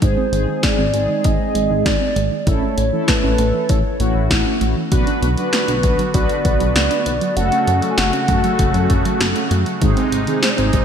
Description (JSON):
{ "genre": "synth-pop", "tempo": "98 BPM", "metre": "4/4", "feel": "straight", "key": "B dorian", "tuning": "A4 = 440 Hz", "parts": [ { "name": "hollow clarinet-like synth lead", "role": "melody", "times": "0.0-10.8 s", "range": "B4 to G#5", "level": "-22 LUFS", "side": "equal", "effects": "chorus" }, { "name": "mellow synth brass", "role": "accompaniment", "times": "0.0-10.8 s", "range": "G#3 to B4", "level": "-22 LUFS", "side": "left 1 dB", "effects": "chorus" }, { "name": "soft round pluck", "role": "arpeggios", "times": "0.0-10.8 s", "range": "D#3 to F#4", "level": "-25 LUFS", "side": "right 5 dB", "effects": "chorus, digital delay" }, { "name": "chorused synth bass", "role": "bass", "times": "0.0-10.8 s", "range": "F#1 to F#2", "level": "-20 LUFS", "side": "equal", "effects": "none" }, { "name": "punchy analog drum machine", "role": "drums", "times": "0.0-10.8 s", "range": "hi-hat, kick drum, snare drum", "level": "-19 LUFS", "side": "equal", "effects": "gated reverb" }, { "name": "brassy analog pad", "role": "sustained chords", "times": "4.9-10.8 s", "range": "B#2 to F#4", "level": "-25 LUFS", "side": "right 1 dB", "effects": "chorus" } ], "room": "moderate lush hall reverb, RT60 3.0 s", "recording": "bright 1980s-style digital production", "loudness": "-15 LUFS", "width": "side -8 dB against mid", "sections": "0.0-4.9 A section; 4.9-10.8 B section", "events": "none", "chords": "0.0 G#; 2.5 A; 4.9 Bm; 7.4 F#m; 9.8 G#", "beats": "| 0.02 0.63 1.25 1.86 | 2.47 3.08 3.69 4.31 | 4.92 5.53 6.14 6.75 | 7.37 7.98 8.59 9.20 | 9.82 10.43" }